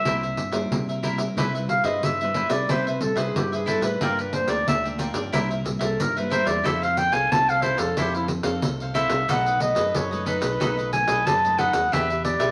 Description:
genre	samba and choro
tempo	91 BPM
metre	4/4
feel	straight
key	C major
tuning	A4 = 440 Hz
part	warm clarinet	melody	0.0-12.5 s	E4 to A5	-26 LUFS	equal	none
part	cavaquinho	accompaniment	0.0-12.5 s	D4 to G5	-32 LUFS	equal	none
part	nylon-string guitar	accompaniment	0.1-12.5 s	F#2 to A4	-35 LUFS	equal	none
part	fingered electric bass with an envelope filter	bass	0.1-12.5 s	B1 to C3	-34 LUFS	equal	none
part	pandeiro	percussion	0.1-12.5 s	none	-30 LUFS	equal	none
room	wet studio reverb, RT60 0.9 s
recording	none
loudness	-23 LUFS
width	mono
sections	0.0-1.4 A section; 1.4-12.5 B section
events	clarinet solo 1.4-12.5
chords	0.0 C7; 1.4 Cmaj7; 4.0 Gm7; 5.3 C7; 6.7 Fmaj7; 9.3 B7; 11.9 Em7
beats	0.05 0.71 | 1.37 2.03 2.69 3.35 | 4.01 4.67 5.33 5.99 | 6.65 7.32 7.97 8.63 | 9.29 9.95 10.61 11.27 | 11.93

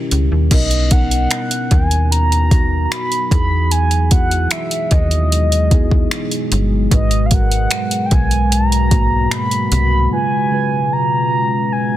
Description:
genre	contemporary R&B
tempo	75 BPM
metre	4/4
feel	straight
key	unclear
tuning	A4 = 440 Hz
part	muted felt-like synth keys	accompaniment	0.0-12.0 s	G#2 to B4	-23 LUFS	right 1 dB	chorus
part	deep dark ambient pad	sustained chords	0.0-12.0 s	B2 to G#4	-23 LUFS	left 1 dB	chorus, built-in reverb
part	slap-like FM bass	bass	0.1-10.1 s	G1 to E2	-16 LUFS	equal	none
part	smooth R&B drum kit	drums	0.1-9.9 s	crash cymbal, finger snaps, hi-hat, kick drum	-16 LUFS	equal	overdrive, soft clipping on snare
part	mellow horn-like synth lead	melody	0.5-12.0 s	D#5 to B5	-20 LUFS	right 1 dB	chorus
room	little or no reverb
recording	dense, heavily limited modern master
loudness	-13 LUFS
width	side -13 dB against mid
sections	0.5-12.0 A section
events	break 10.1-12.0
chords	0.0 D#7b9; 0.5 Bmaj7; 3.3 Emaj7; 6.9 G#m7; 10.1 C#7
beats	| 0.51 1.31 2.11 2.91 | 3.71 4.51 5.31 6.11 | 6.91 7.71 8.51 9.31 | 10.11 10.91 11.71

